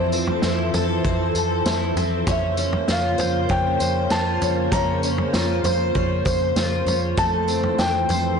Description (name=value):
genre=dream pop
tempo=98 BPM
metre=4/4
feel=straight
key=unclear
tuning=A4 = 440 Hz
part: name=felt-muted upright piano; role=melody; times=0.0-8.4 s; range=C5 to Bb5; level=-26 LUFS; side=left 1 dB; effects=digital delay
part: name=soft string machine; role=sustained chords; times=0.0-8.4 s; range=Db3 to C5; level=-26 LUFS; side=right 2 dB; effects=ensemble chorus
part: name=picked twelve-string acoustic guitar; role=arpeggios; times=0.0-8.4 s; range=A3 to C5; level=-24 LUFS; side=left 2 dB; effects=lush chorus, digital delay
part: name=vintage muted fingered electric bass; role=bass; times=0.0-8.4 s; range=F2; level=-25 LUFS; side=right 1 dB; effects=tube saturation
part: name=vintage drum kit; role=drums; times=0.1-8.2 s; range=kick drum, snare drum, tambourine, toms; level=-26 LUFS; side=right 1 dB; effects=none
room=light reverb, small room ambience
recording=blown-out, overdriven recording, overdrive, nothing above 10.5 kHz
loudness=-19 LUFS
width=side -6 dB against mid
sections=0.0-8.4 A section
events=none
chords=0.0 Fmaj7; 2.3 Bbmadd9/F; 7.2 Fmaj7